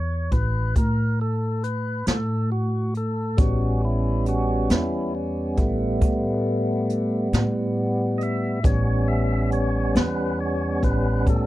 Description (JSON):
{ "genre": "slow blues", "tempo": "46 BPM (dotted quarters)", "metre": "12/8", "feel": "straight", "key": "unclear", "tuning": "A4 = 444 Hz", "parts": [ { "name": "tonewheel organ", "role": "sustained chords", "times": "0.0-11.5 s", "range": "G3 to E5", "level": "-25 LUFS", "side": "equal", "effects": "slow rotary speaker, overdrive" }, { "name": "upright bass", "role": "bass", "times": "0.0-11.5 s", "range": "A1 to A2", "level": "-24 LUFS", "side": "equal", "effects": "none" }, { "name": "jazz brush drum kit", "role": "drums", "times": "0.3-11.5 s", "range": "hi-hat, kick drum, snare drum", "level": "-22 LUFS", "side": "equal", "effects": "none" } ], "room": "little or no reverb", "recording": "none", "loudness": "-21 LUFS", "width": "side -16 dB against mid", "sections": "0.0-11.5 A section", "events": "tonewheel organ solo 0.0-11.5", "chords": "0.0 A7" }